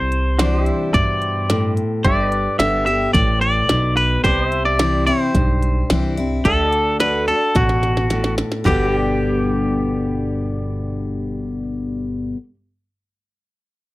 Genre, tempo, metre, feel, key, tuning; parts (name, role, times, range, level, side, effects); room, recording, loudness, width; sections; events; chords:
honky-tonk and classic country; 109 BPM; 4/4; straight; G major; A4 = 440 Hz
twangy electric guitar; melody; 0.0-12.3 s; F#4 to E5; -20 LUFS; equal
picked steel-string acoustic guitar; accompaniment; 0.0-12.4 s; G2 to G4; -22 LUFS; left 2 dB
upright bass; bass; 0.0-12.3 s; G1 to G2; -22 LUFS; equal
glitchy drum kit; drums; 0.1-8.8 s; hi-hat, kick drum, snare drum, toms; -20 LUFS; right 1 dB
pedal steel guitar; sustained chords; 0.4-11.6 s; F#4 to E5; -28 LUFS; right 2 dB
light reverb; dry, close 1970s-style studio recording; -16 LUFS; side -18 dB against mid
0.0-8.7 A section; 8.7-10.9 B section
drum fill 7.6-8.7
0.0 Cadd9; 2.0 G; 4.2 C; 6.5 D; 8.7 G